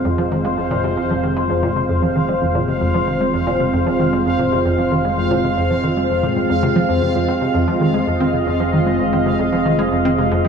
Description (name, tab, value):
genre	ambient, sequencer-driven space music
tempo	114 BPM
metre	4/4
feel	straight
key	F minor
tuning	A4 = 440 Hz
part	sweeping resonant pad	sustained chords	0.0-10.5 s	Ab3 to Eb5	-18 LUFS	equal	chorus
part	hollow square pluck	riff	0.0-10.5 s	F2 to C4	-20 LUFS	equal	chorus, analog delay
part	fat analog bass	bass	0.0-10.5 s	F1	-28 LUFS	equal	none
part	bubbling stepped-filter texture	texture	0.0-10.5 s	F5	-26 LUFS	right 3 dB	chorus, built-in reverb
room	wet cathedral reverb, RT60 5.8 s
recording	in a vast, echoing space, small room ambience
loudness	-15 LUFS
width	side -6 dB against mid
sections	0.0-10.5 A section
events	filter sweep on synth arpeggio sound 0.0-10.5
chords	0.0 Fm